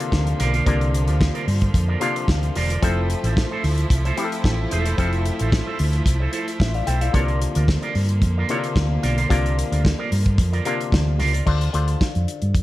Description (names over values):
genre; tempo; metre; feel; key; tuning
disco; 111 BPM; 4/4; straight; F major; A4 = 442 Hz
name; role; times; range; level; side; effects
auto-wah clav; accompaniment; 0.0-12.6 s; C3 to G5; -28 LUFS; left 6 dB; none
electric guitar with an envelope filter; accompaniment; 0.0-11.4 s; E4 to D5; -28 LUFS; right 5 dB; none
clear studio string section; sustained chords; 0.0-11.4 s; D3 to E4; -29 LUFS; right 1 dB; none
warm soul drum kit; drums; 0.0-12.6 s; crash cymbal, hi-hat, kick drum, snare drum; -23 LUFS; equal; none
hollow-body short-scale fingered electric bass; bass; 0.1-12.6 s; E1 to G2; -21 LUFS; equal; none
room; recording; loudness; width
studio ambience; none; -18 LUFS; side -16 dB against mid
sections
0.0-11.5 A section; 11.5-12.6 B section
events
none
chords
0.0 C9sus4; 2.8 Fmaj7; 7.1 C9sus4; 11.5 Dm7